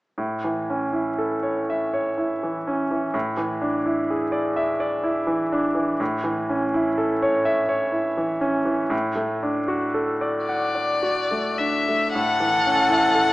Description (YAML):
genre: classical, slow romantic movement for piano trio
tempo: 34-43 BPM (dotted quarters)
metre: 6/8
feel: rubato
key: A major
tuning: A4 = 440 Hz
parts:
  - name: bright concert grand piano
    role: accompaniment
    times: 0.2-13.3 s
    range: A2 to F#5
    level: -22 LUFS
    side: equal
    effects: none
  - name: clear violin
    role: melody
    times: 10.5-13.3 s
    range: D5 to F#5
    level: -21 LUFS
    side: left 3 dB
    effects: none
  - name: clear cello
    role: second line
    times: 12.1-13.3 s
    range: A4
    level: -22 LUFS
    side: right 1 dB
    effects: none
room: moderate recital hall reverb, RT60 1.5 s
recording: small speaker sound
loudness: -21 LUFS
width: side -18 dB against mid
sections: 0.2-12.2 A section; 12.2-13.3 B section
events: none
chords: 0.2 A; 3.1 E7/A; 6.0 A; 8.9 D/A; 12.2 A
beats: | 0.18 1.69 | 3.14 4.57 | 6.00 7.44 | 8.92 10.48 | 12.15